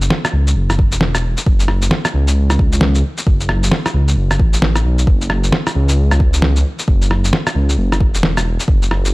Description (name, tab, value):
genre	future garage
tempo	133 BPM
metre	4/4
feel	swing 61% on 16ths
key	F# minor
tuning	A4 = 440 Hz
part	dark detuned saw bass	bass	0.0-9.1 s	E1 to C#2	-15 LUFS	equal	sidechain pumping
part	electronic shaker, snare drum and rim click	drums	0.0-9.1 s	none	-18 LUFS	equal	studio reverb
part	electronic kick drum	drums	0.8-8.8 s	none	-14 LUFS	equal	overdrive, studio reverb
room	little or no reverb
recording	dry, gritty hardware recording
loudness	-12 LUFS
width	side -22 dB against mid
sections	0.0-9.1 A section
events	none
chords	none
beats	0.11 0.56 1.01 | 1.46 1.91 2.36 2.81 | 3.27 3.72 4.17 4.62 | 5.07 5.52 5.97 6.42 | 6.88 7.33 7.78 8.23 | 8.68